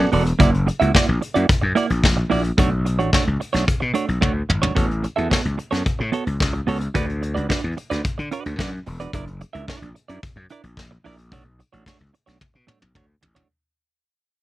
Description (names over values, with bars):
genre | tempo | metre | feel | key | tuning
disco | 110 BPM | 4/4 | straight | unclear | A4 = 440 Hz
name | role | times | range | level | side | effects
clean electric guitar | accompaniment | 0.0-13.5 s | A3 to E5 | -22 LUFS | right 5 dB | none
gritty slap bass | bass | 0.0-13.4 s | E1 to D3 | -22 LUFS | left 1 dB | overdrive
vintage brush drum kit | drums | 0.1-13.5 s | hi-hat, kick drum, snare drum, toms | -20 LUFS | left 1 dB | none
room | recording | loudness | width
little or no reverb | none | -18 LUFS | side -16 dB against mid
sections
0.0-13.5 A section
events
fade-out 0.0-13.5; drum fill 4.2-4.8, 12.4-13.5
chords
0.4 F#7b13; 2.6 Bm9; 4.8 A69; 7.0 D6; 9.1 F#7b13; 11.3 Bm9